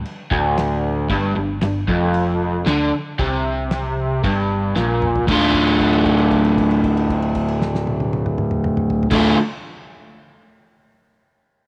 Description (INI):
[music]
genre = garage rock duo or trio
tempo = 115 BPM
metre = 4/4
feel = straight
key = D minor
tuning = A4 = 441 Hz
[part]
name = picked electric bass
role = bass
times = 0.0-9.3 s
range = D1 to D2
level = -29 LUFS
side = equal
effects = none
[part]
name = cloth-damped thuddy drum kit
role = drums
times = 0.1-9.2 s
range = crash cymbal, kick drum, snare drum, toms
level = -29 LUFS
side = equal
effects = none
[part]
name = crunchy overdriven guitar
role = riff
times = 0.3-9.4 s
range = D2 to F4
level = -20 LUFS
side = equal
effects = none
[sound]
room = moderate echo chamber reverb, RT60 2.2 s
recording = none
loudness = -19 LUFS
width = mono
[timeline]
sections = 0.0-5.3 A section; 5.3-9.4 B section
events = drum fill 4.8-5.3; held note 5.3-9.1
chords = 0.0 N.C.; 1.1 G5; 5.3 Dm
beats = 0.05 0.57 | 1.09 1.62 2.14 2.66 | 3.19 3.71 4.23 4.75 | 5.27 5.79 6.32 6.83 | 7.36 7.87 8.39 8.91